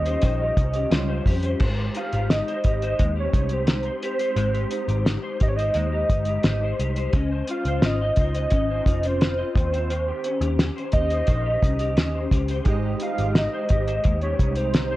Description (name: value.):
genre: indie pop, bedroom pop.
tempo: 87 BPM.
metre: 4/4.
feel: straight.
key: Ab major.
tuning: A4 = 440 Hz.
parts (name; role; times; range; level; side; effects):
soft octave-layered synth lead; melody; 0.0-15.0 s; C5 to F5; -27 LUFS; right 1 dB; ensemble chorus, analog delay.
electric guitar through a small old amp; accompaniment; 0.0-15.0 s; Eb3 to Eb5; -29 LUFS; left 3 dB; ensemble chorus, vibrato effect.
warm analog keys; accompaniment; 0.0-1.6, 12.6-15.0 s; G3 to Eb5; -32 LUFS; right 4 dB; chorus.
vintage muted picked electric bass; bass; 0.0-14.9 s; F1 to F2; -26 LUFS; equal; none.
cloth-damped thuddy drum kit; drums; 0.1-14.9 s; crash cymbal, hi-hat, kick drum, snare drum; -22 LUFS; equal; vintage 12-bit sampler grit.
room: light reverb.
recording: cassette tape.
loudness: -20 LUFS.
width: side -16 dB against mid.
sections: 0.0-1.6 A section; 1.6-15.0 A section.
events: none.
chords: 0.0 Eb13; 1.6 Abmaj7; 7.1 Dbmaj9; 9.6 Eb6; 12.7 Abmaj7.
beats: 0.23 0.92 | 1.61 2.30 2.99 3.68 | 4.37 5.06 5.75 6.45 | 7.14 7.83 8.52 9.21 | 9.90 10.59 11.28 11.97 | 12.67 13.36 14.05 14.74.